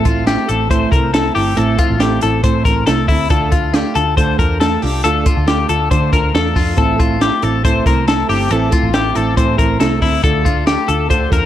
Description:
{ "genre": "jangly indie pop", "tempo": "138 BPM", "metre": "4/4", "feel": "straight", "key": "D minor", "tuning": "A4 = 440 Hz", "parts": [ { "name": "fingerpicked plugged-in steel-string acoustic guitar", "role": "accompaniment", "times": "0.0-11.5 s", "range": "A2 to A4", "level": "-19 LUFS", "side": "right 4 dB", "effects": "none" }, { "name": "twelve-string electric guitar", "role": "arpeggios", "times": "0.0-11.5 s", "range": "E4 to C5", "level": "-17 LUFS", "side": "left 6 dB", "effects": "spring reverb, analog delay" }, { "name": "vintage muted picked electric bass", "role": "bass", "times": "0.0-11.5 s", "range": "G1 to D3", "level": "-19 LUFS", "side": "equal", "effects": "none" }, { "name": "compact cocktail drum kit", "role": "drums", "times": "0.1-11.4 s", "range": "hi-hat, kick drum, snare drum", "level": "-17 LUFS", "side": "equal", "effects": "none" } ], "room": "light reverb, small room ambience", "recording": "none", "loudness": "-12 LUFS", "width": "side -11 dB against mid", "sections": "0.0-11.5 A section", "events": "none", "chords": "0.0 Am; 3.3 Dm; 6.8 Am; 10.2 Dm", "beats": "0.27 0.70 1.14 | 1.57 2.01 2.44 2.88 | 3.31 3.74 4.17 4.61 | 5.04 5.47 5.91 6.34 | 6.78 7.21 7.64 8.07 | 8.51 8.94 9.37 9.81 | 10.24 10.67 11.11" }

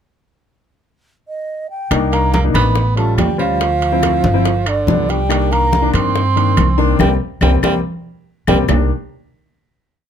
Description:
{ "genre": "Afro-Cuban jazz", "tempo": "142 BPM", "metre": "4/4", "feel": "straight", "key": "C minor", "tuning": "A4 = 442 Hz", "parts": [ { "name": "mellow hollow concert flute", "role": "melody", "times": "1.3-8.6 s", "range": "D5 to C6", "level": "-20 LUFS", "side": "right 2 dB", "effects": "none" }, { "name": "warm upright piano", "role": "accompaniment", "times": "1.9-8.9 s", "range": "Eb3 to F4", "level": "-19 LUFS", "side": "left 5 dB", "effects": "none" }, { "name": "upright bass", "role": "bass", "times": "1.9-8.9 s", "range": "G1 to G2", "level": "-17 LUFS", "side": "equal", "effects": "none" }, { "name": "bongos", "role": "percussion", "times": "1.9-8.8 s", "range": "none", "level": "-26 LUFS", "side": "left 7 dB", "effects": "none" }, { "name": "claves", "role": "percussion", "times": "1.9-8.8 s", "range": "none", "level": "-28 LUFS", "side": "left 5 dB", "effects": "none" }, { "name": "congas", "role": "percussion", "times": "1.9-8.8 s", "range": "none", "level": "-22 LUFS", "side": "left 1 dB", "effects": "none" }, { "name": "timbales", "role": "percussion", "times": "1.9-8.8 s", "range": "none", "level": "-25 LUFS", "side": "right 7 dB", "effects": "none" }, { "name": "clear tenor saxophone", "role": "second line", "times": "2.1-8.6 s", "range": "D3 to C4", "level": "-22 LUFS", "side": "right 7 dB", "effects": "none" } ], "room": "light reverb", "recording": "close, detailed microphones", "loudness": "-13 LUFS", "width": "side -8 dB against mid", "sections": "0.2-1.9 pickup bar; 1.9-8.7 A section; 8.7-10.1 final chord", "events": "band accent 7.0-8.7; drum fill 8.3-8.7", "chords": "0.2 N.C.; 1.9 Cm9; 2.8 A7b13; 3.6 Dm7; 4.5 G7; 5.3 Cm9", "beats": "| 0.22 0.64 1.07 1.49 | 1.91 2.34 2.76 3.18 | 3.61 4.03 4.45 4.88 | 5.30 5.73 6.15 6.58 | 7.00 7.42 7.85 8.27 | 8.70" }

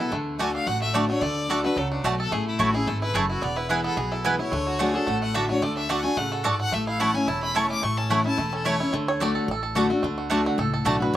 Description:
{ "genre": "bluegrass", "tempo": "218 BPM", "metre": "4/4", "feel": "swing 54% on 8ths", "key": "unclear", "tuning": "A4 = 440 Hz", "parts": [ { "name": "bluegrass banjo", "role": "melody", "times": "0.0-11.1 s", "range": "E3 to D5", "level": "-30 LUFS", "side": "right 4 dB", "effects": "slapback echo" }, { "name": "clear fiddle", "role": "melody", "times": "0.0-8.5 s", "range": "D4 to D6", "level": "-29 LUFS", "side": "left 3 dB", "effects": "none" }, { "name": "picked steel-string acoustic guitar", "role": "accompaniment", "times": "0.0-11.2 s", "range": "E2 to F#4", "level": "-26 LUFS", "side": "left 2 dB", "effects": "none" }, { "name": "upright bass", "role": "bass", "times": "0.1-11.2 s", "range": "E1 to D2", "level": "-32 LUFS", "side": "equal", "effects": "none" }, { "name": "mandolin", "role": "stabs", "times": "0.4-11.0 s", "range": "A3 to A5", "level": "-25 LUFS", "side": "right 2 dB", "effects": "none" }, { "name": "clear fiddle", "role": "second line", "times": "4.7-5.1, 8.5-8.9 s", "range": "F#4 to C#5", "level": "-31 LUFS", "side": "left 2 dB", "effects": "slapback echo" } ], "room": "little or no reverb", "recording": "recorded outdoors, with no room sound", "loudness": "-22 LUFS", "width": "side -12 dB against mid", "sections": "0.0-8.9 A section; 8.9-11.2 B section", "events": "five-string banjo solo 8.9-11.2", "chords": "0.1 D; 2.3 A; 3.4 E; 4.5 D; 6.7 A; 8.9 D", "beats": "| 0.12 0.39 0.67 0.94 | 1.22 1.49 1.77 2.04 | 2.32 2.59 2.87 3.15 | 3.42 3.69 3.97 4.25 | 4.52 4.80 5.07 5.35 | 5.62 5.90 6.17 6.45 | 6.73 7.00 7.28 7.55 | 7.83 8.10 8.38 8.65 | 8.93 9.21 9.48 9.76 | 10.03 10.31 10.58 10.86 | 11.13" }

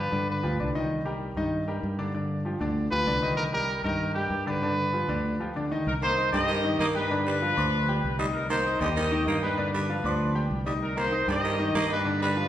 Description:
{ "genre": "latin", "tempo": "194 BPM", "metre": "4/4", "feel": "straight", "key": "C minor", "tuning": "A4 = 442 Hz", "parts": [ { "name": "clear trumpet", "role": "melody", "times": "0.0-0.7, 2.9-5.6 s", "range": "G4 to B4", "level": "-29 LUFS", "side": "equal", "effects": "none" }, { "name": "clear concert grand piano", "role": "accompaniment", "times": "0.0-12.5 s", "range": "D3 to Eb6", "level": "-30 LUFS", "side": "left 1 dB", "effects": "none" }, { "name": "fingered electric bass", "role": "bass", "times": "0.0-12.5 s", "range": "C2 to G2", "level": "-30 LUFS", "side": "equal", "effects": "none" }, { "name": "clear trumpet section", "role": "melody", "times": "5.9-12.5 s", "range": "D4 to Eb5", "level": "-28 LUFS", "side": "left 1 dB", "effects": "none" }, { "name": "raspy baritone saxophone", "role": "second line", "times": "6.0-12.4 s", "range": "D3 to Bb3", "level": "-32 LUFS", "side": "right 3 dB", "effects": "none" } ], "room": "wet recital hall reverb, RT60 1.6 s", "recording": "recorded in a church or concert hall", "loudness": "-24 LUFS", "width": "side -11 dB against mid", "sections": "0.0-5.9 A section; 5.9-12.5 B section", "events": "break 5.2-5.9", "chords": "0.0 G7; 0.9 Cm7; 2.1 G7; 3.4 Cm7; 4.6 G7; 5.9 Cm7; 7.1 G7; 8.3 Cm7; 9.6 G7; 10.8 Cm7", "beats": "0.28 0.59 | 0.90 1.21 1.52 1.83 | 2.14 2.45 2.76 3.07 | 3.38 3.69 4.00 4.31 | 4.62 4.93 5.25 5.55 | 5.87 6.17 6.49 6.79 | 7.10 7.41 7.72 8.03 | 8.34 8.65 8.96 9.27 | 9.58 9.89 10.20 10.51 | 10.82 11.13 11.44 11.74 | 12.05 12.36" }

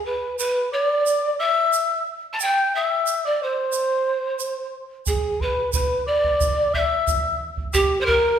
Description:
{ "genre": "andean folk, Andean ensemble", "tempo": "90 BPM", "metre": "2/4", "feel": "straight", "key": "unclear", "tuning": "A4 = 440 Hz", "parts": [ { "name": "breathy mellow pan flute", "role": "melody", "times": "0.0-8.4 s", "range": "G4 to A5", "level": "-21 LUFS", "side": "right 1 dB", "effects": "none" }, { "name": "breathy mellow quena", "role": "second line", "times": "0.0-8.4 s", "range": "G5 to A6", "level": "-26 LUFS", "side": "left 4 dB", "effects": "none" }, { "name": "egg shaker", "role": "percussion", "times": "0.4-7.9 s", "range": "none", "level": "-30 LUFS", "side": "right 7 dB", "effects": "none" }, { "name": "bombo", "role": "percussion", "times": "5.1-8.2 s", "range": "none", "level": "-27 LUFS", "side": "right 2 dB", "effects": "none" } ], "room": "wet recital hall reverb, RT60 1.5 s", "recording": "minimal, uncompressed stereo recording", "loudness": "-19 LUFS", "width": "side -9 dB against mid", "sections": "0.0-8.4 A section", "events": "none", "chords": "none", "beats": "0.39 | 1.06 1.73 | 2.40 3.06 | 3.73 4.40 | 5.07 5.74 | 6.41 7.08 | 7.75" }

